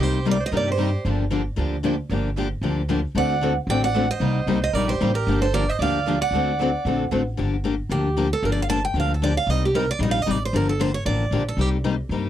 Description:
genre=acoustic string swing (jazz manouche)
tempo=228 BPM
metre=4/4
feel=swing 55% on 8ths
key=G minor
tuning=A4 = 437 Hz
part: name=picked steel-string acoustic guitar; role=melody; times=0.0-1.0, 3.2-11.7 s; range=G4 to A5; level=-25 LUFS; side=right 4 dB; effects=none
part: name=edgy soprano saxophone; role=second line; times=0.0-1.0, 3.2-7.1 s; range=G4 to D5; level=-31 LUFS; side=right 5 dB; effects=none
part: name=picked steel-string acoustic guitar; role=accompaniment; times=0.0-12.3 s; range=C3 to A4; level=-24 LUFS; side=left 6 dB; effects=none
part: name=picked steel-string acoustic guitar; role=accompaniment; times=0.0-7.2 s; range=C3 to A4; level=-30 LUFS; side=right 9 dB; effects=none
part: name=upright bass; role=bass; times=0.0-12.3 s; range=G1 to G2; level=-25 LUFS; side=equal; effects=none
room=little or no reverb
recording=dry, close 1970s-style studio recording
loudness=-20 LUFS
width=side -11 dB against mid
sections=0.0-7.4 A section; 7.4-12.3 B section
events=steel-string acoustic guitar solo 7.4-12.3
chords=0.0 Cm7; 1.1 Gm7; 3.2 D7; 4.2 Cm7; 5.3 Gm7; 6.3 D7; 7.4 Gm7; 9.5 Cm7; 10.5 Gm7; 11.6 Cm7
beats=| 0.00 0.26 0.52 0.79 | 1.05 1.31 1.58 1.84 | 2.10 2.37 2.63 2.89 | 3.16 3.42 3.68 3.94 | 4.21 4.47 4.74 5.00 | 5.26 5.52 5.79 6.05 | 6.31 6.58 6.84 7.10 | 7.37 7.63 7.89 8.16 | 8.42 8.68 8.95 9.21 | 9.47 9.74 10.00 10.26 | 10.53 10.79 11.05 11.31 | 11.58 11.84 12.10

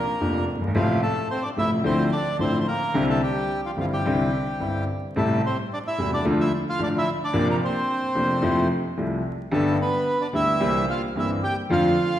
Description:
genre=tango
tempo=110 BPM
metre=4/4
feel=rubato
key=unclear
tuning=A4 = 440 Hz
part: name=bandoneon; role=melody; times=0.0-12.2 s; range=F3 to G5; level=-25 LUFS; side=right 1 dB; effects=none
part: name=bright concert grand piano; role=accompaniment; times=0.2-11.9 s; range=E1 to G4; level=-23 LUFS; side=left 1 dB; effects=none
room=wet recital hall reverb, RT60 1.6 s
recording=recorded in a church or concert hall, vinyl crackle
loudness=-21 LUFS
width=side -11 dB against mid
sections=0.0-12.2 A section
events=none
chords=0.0 Bbadd9; 0.8 Fmaj7/A; 1.9 Dmadd9; 2.9 Cadd9; 5.2 Am7; 6.2 Dm; 7.3 Bbadd9; 8.4 Fmaj7; 9.5 G; 10.6 C7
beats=0.21 | 0.75 1.30 1.85 2.40 | 2.95 3.50 4.04 4.60 | 5.15 5.70 6.25 6.80 | 7.34 7.89 8.43 8.98 | 9.52 10.07 10.61 11.16 | 11.71

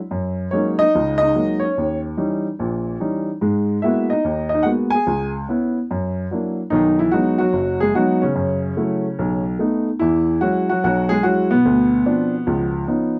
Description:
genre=solo jazz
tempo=146 BPM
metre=4/4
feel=swing 65% on 8ths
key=B major from 6.7 s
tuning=A4 = 438 Hz
part: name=warm upright piano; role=solo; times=0.1-13.2 s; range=F#1 to G#5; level=-20 LUFS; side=equal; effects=none
room=light reverb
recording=close, detailed microphones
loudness=-19 LUFS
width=mono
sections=0.0-6.7 A section; 6.7-13.2 B section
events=none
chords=0.1 F#69; 1.8 D#7b9; 3.4 G#m9; 5.1 C#m7; 5.9 F#aug7; 6.7 B6; 8.4 F#m7; 9.2 B7; 10.0 E69; 11.6 Dm7; 12.5 C#9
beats=| 0.11 0.52 0.94 1.35 | 1.76 2.17 2.59 3.00 | 3.41 3.83 4.24 4.65 | 5.06 5.47 5.89 6.30 | 6.71 7.12 7.53 7.95 | 8.36 8.77 9.18 9.59 | 10.00 10.41 10.82 11.23 | 11.65 12.06 12.47 12.88

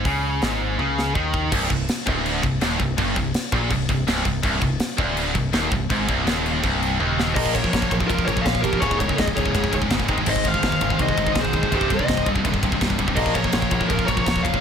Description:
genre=heavy metal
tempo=165 BPM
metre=4/4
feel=straight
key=C phrygian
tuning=A4 = 439 Hz
part: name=heavy high-gain guitar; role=riff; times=0.0-14.6 s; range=C2 to Bb3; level=-26 LUFS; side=left 10 dB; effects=distortion
part: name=scooped high-gain guitar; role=riff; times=0.0-14.6 s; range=C2 to Bb3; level=-26 LUFS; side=right 11 dB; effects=distortion
part: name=picked electric bass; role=bass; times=0.0-14.5 s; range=C1 to Eb2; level=-27 LUFS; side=equal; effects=none
part: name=tight metal drum kit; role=drums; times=0.1-14.6 s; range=crash cymbal, hi-hat, kick drum, ride cymbal, snare drum, toms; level=-25 LUFS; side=equal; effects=none
part: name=heavy high-gain guitar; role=riff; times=1.5-14.6 s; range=C2 to Bb3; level=-27 LUFS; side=equal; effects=distortion
part: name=high-gain lead guitar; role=melody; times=7.4-14.6 s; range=Bb4 to F5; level=-25 LUFS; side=left 3 dB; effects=distortion
part: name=high-gain lead guitar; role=second line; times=7.4-14.6 s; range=F4 to Db5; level=-30 LUFS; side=right 4 dB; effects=distortion, tape echo
room=light reverb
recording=none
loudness=-19 LUFS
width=side -7 dB against mid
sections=0.0-1.5 A section; 1.5-7.4 B section; 7.4-14.6 C section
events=drum fill 0.8-1.5, 7.0-7.4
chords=0.0 Ab5; 1.5 Cm; 7.4 Bbm; 8.8 Db5; 10.1 Ab; 11.7 Cm; 13.2 Bbm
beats=| 0.06 0.42 0.79 1.15 | 1.52 1.88 2.25 2.61 | 2.98 3.34 3.71 4.07 | 4.44 4.80 5.17 5.53 | 5.90 6.26 6.63 6.99 | 7.36 7.72 8.08 8.45 | 8.81 9.18 9.54 9.90 | 10.27 10.63 10.99 11.36 | 11.72 12.09 12.45 12.81 | 13.17 13.54 13.90 14.26

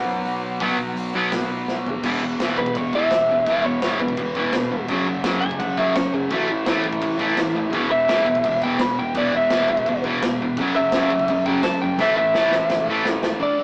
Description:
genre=punk rock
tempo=169 BPM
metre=4/4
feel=straight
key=unclear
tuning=A4 = 437 Hz
part: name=lightly driven lead guitar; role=melody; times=0.0-13.6 s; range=E4 to B5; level=-24 LUFS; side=equal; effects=none
part: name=fuzz guitar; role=riff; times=0.0-13.4 s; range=E2 to B3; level=-29 LUFS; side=equal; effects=distortion
part: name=overdriven picked electric bass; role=bass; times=0.0-13.4 s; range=E1 to B2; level=-42 LUFS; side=equal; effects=none
part: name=big rock drum kit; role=drums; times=0.3-13.3 s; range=crash cymbal, hi-hat, kick drum, snare drum, toms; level=-30 LUFS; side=equal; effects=none
part: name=cranked stack guitar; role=riff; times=0.6-13.4 s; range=E2 to B3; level=-28 LUFS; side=equal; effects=overdrive
part: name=crunchy overdriven guitar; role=riff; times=0.6-13.6 s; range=E2 to D4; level=-31 LUFS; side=equal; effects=none
room=moderate stone room reverb, RT60 1.4 s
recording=rough rehearsal-room recording, tube saturation, small speaker sound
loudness=-21 LUFS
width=mono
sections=0.0-2.0 A section; 2.0-13.4 B section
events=half time 0.0-2.0; drum fill 1.7-2.0, 12.0-13.4; lead electric guitar solo 2.0-13.4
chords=0.0 B5; 2.0 E5; 4.9 F#5; 6.3 A5; 7.7 E5; 10.6 F#5; 12.0 A5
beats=0.26 | 0.61 0.97 1.32 1.68 | 2.03 2.39 2.75 3.10 | 3.46 3.81 4.17 4.53 | 4.88 5.24 5.60 5.95 | 6.31 6.67 7.02 7.38 | 7.73 8.09 8.45 8.80 | 9.16 9.51 9.87 10.22 | 10.58 10.93 11.29 11.64 | 12.00 12.35 12.71 13.06 | 13.41

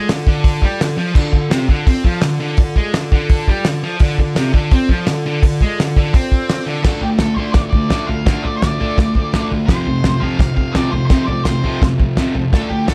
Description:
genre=garage rock duo or trio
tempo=169 BPM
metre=4/4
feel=straight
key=D minor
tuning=A4 = 441 Hz
part: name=combo organ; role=sustained chords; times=0.0-12.9 s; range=F4 to D5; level=-31 LUFS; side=equal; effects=none
part: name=thick fuzz guitar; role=riff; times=0.0-12.9 s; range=F2 to D4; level=-21 LUFS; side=equal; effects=distortion
part: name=cloth-damped thuddy drum kit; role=drums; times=0.1-12.9 s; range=crash cymbal, hi-hat, kick drum, snare drum, toms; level=-18 LUFS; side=equal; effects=none
part: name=octave-fuzz lead guitar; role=melody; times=6.8-12.9 s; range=G4 to F5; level=-28 LUFS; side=equal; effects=distortion
room=light reverb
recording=none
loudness=-16 LUFS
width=mono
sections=0.0-6.9 A section; 6.9-12.9 B section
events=none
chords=0.0 Dm; 9.7 F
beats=0.09 0.45 0.80 | 1.16 1.52 1.87 2.23 | 2.58 2.94 3.30 3.65 | 4.01 4.36 4.72 5.08 | 5.43 5.79 6.14 6.50 | 6.85 7.21 7.56 7.92 | 8.27 8.63 8.98 9.34 | 9.69 10.05 10.40 10.76 | 11.11 11.47 11.82 12.18 | 12.53 12.88

